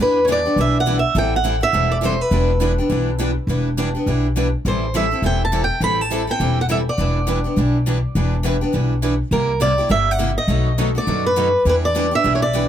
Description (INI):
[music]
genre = acoustic string swing (jazz manouche)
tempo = 206 BPM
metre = 4/4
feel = swing 59% on 8ths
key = E minor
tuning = A4 = 440 Hz
[part]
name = picked swing-style acoustic guitar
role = melody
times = 0.0-12.7 s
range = Bb4 to B5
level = -19 LUFS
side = right 1 dB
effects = tape echo
[part]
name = picked steel-string acoustic guitar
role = accompaniment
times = 0.0-12.6 s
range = B2 to A4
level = -24 LUFS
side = left 2 dB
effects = none
[part]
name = picked steel-string acoustic guitar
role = accompaniment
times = 0.0-12.6 s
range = B2 to B4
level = -26 LUFS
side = right 6 dB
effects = none
[part]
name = upright bass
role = bass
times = 0.0-12.7 s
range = E1 to F#2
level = -20 LUFS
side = equal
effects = none
[sound]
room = little or no reverb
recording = close, detailed microphones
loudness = -16 LUFS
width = side -10 dB against mid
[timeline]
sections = 0.0-12.7 A section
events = none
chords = 0.0 Em7; 1.2 Am7; 2.3 Em7; 4.6 Am7; 7.0 Em7; 9.3 C7; 10.5 B7#9; 11.7 Em7